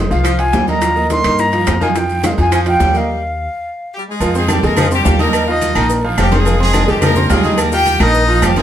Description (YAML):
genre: latin, salsa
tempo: 213 BPM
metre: 4/4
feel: straight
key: F minor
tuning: A4 = 441 Hz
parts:
  - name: clear concert grand piano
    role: accompaniment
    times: 0.0-8.6 s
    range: F3 to F6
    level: -19 LUFS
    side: right 3 dB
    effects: none
  - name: upright bass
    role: bass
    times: 0.0-8.6 s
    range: F1 to G2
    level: -17 LUFS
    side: equal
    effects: none
  - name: reedy concert flute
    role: melody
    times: 0.1-3.9 s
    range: F5 to C6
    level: -17 LUFS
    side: left 1 dB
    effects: none
  - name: bongos and cowbell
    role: percussion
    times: 0.1-8.6 s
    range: none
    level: -26 LUFS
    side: left 2 dB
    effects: none
  - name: congas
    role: percussion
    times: 0.1-8.6 s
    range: none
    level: -22 LUFS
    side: equal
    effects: none
  - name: guiro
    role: percussion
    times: 0.1-8.6 s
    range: none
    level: -34 LUFS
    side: right 4 dB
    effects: none
  - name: maracas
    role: percussion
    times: 0.1-8.6 s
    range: none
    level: -32 LUFS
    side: left 5 dB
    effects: none
  - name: clear saxophone section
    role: second line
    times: 0.2-8.6 s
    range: Eb3 to G3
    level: -22 LUFS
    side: equal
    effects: none
  - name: claves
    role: percussion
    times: 0.2-8.6 s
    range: none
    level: -30 LUFS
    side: left 4 dB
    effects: none
  - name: timbales and agogo bells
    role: percussion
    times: 0.2-8.6 s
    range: none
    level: -23 LUFS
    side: right 6 dB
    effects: none
  - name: brilliant horn section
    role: melody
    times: 3.9-8.6 s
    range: G3 to G5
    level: -16 LUFS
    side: left 2 dB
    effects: none
room: wet small room reverb, RT60 0.5 s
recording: heard from further back in the room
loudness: -12 LUFS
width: side -10 dB against mid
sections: 0.0-4.2 A section; 4.2-8.6 B section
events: stop 3.1-4.2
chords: 0.0 Fmadd9; 0.8 Ebadd9; 2.0 Fmadd9; 3.1 Ebadd9; 4.2 Fmadd9